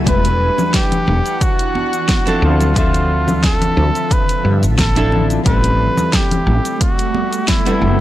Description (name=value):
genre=sunset chillout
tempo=89 BPM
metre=4/4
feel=swing 54% on 16ths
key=unclear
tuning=A4 = 442 Hz
part: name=nylon-string guitar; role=accompaniment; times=0.0-8.0 s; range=F3 to E5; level=-21 LUFS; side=moving between left 4 dB and right 3 dB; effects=auto-pan
part: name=shimmering ambient pad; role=sustained chords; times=0.0-8.0 s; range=D3 to F#5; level=-24 LUFS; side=right 1 dB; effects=chorus, built-in reverb
part: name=woody fretless electric bass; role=bass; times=0.0-8.0 s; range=E1 to G2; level=-16 LUFS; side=equal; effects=none
part: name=clear flugelhorn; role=melody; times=0.1-8.0 s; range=E4 to B4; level=-20 LUFS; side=equal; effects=analog delay
part: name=deep house drum kit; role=drums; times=0.1-7.8 s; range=congas, hi-hat, shaker, snare drum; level=-20 LUFS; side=left 1 dB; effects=overdrive, studio reverb
part: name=electronic kick drum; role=drums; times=0.1-7.6 s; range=none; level=-18 LUFS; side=equal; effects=overdrive, studio reverb
part: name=congas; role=percussion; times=0.6-8.0 s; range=none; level=-27 LUFS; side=right 3 dB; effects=none
room=small room ambience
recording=dry, gritty hardware recording, cassette tape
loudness=-13 LUFS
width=side -14 dB against mid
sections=0.0-8.0 A section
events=none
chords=0.1 Em9; 2.4 Dm9; 5.5 Am9